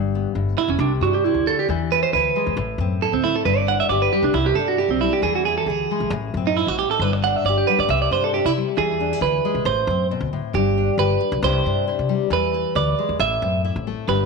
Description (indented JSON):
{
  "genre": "highlife guitar band",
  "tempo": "136 BPM",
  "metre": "4/4",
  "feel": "swing 53% on 16ths",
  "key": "unclear",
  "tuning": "A4 = 440 Hz",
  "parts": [
    { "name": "nylon-string guitar", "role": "accompaniment", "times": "0.0-14.3 s", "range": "G2 to B4", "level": "-25 LUFS", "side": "left 14 dB", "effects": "none" },
    { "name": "upright bass", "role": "bass", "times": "0.0-14.2 s", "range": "E1 to C3", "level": "-25 LUFS", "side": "left 2 dB", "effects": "none" },
    { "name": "clean electric guitar", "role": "arpeggios", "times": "0.6-14.3 s", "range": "C4 to F#5", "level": "-20 LUFS", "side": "right 8 dB", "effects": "tape echo" }
  ],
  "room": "wet echo chamber reverb, RT60 1.3 s, small room ambience",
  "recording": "1960s-style stereo with parts hard left and right",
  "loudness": "-18 LUFS",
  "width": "side -4 dB against mid",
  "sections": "0.0-14.1 A section",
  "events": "clean electric guitar solo 0.0-14.1",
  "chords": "0.0 G; 0.8 Csus2; 1.7 E; 2.6 Am; 3.5 G; 4.3 Cadd9; 5.2 E; 6.1 Am; 7.0 G5; 7.9 Cadd9; 8.8 E; 9.7 Amadd9; 10.5 G; 11.4 Cadd9; 12.3 E; 13.2 Am"
}